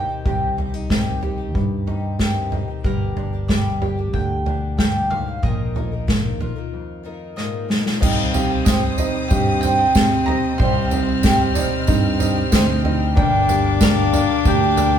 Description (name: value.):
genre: indie folk with a building arrangement.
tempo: 93 BPM.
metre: 4/4.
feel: straight.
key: C minor.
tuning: A4 = 440 Hz.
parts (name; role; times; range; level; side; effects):
mandolin; melody; 0.0-15.0 s; Bb4 to C6; -24 LUFS; right 2 dB; none.
fingerpicked steel-string acoustic guitar; accompaniment; 0.0-10.6 s; F2 to G4; -30 LUFS; equal; none.
picked twelve-string acoustic guitar; accompaniment; 0.0-15.0 s; G2 to Bb4; -28 LUFS; left 3 dB; none.
fingered electric bass; bass; 0.0-15.0 s; G1 to C3; -24 LUFS; equal; none.
unplugged drum kit; drums; 0.3-14.9 s; crash cymbal, kick drum, snare drum, toms; -20 LUFS; equal; none.
rich cello; second line; 8.0-15.0 s; C4 to D4; -24 LUFS; left 2 dB; none.
warm upright piano; accompaniment; 8.0-15.0 s; G1 to F5; -29 LUFS; right 4 dB; none.
warm symphonic string section; sustained chords; 8.0-15.0 s; Bb4 to F6; -30 LUFS; left 1 dB; none.
dark upright piano; arpeggios; 8.0-15.0 s; D4 to C5; -26 LUFS; right 4 dB; none.
tambourine; percussion; 8.3-14.9 s; none; -34 LUFS; right 6 dB; none.
room: moderate stone room reverb, RT60 1.2 s.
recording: band playing live in one room.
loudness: -17 LUFS.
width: side -9 dB against mid.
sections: 0.0-8.0 A section; 8.0-15.0 B section.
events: break 6.7-8.0; drum fill 7.4-8.0.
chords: 0.0 Cm; 2.8 Gm; 5.4 Bbsus4; 8.0 Cm; 13.2 Gm.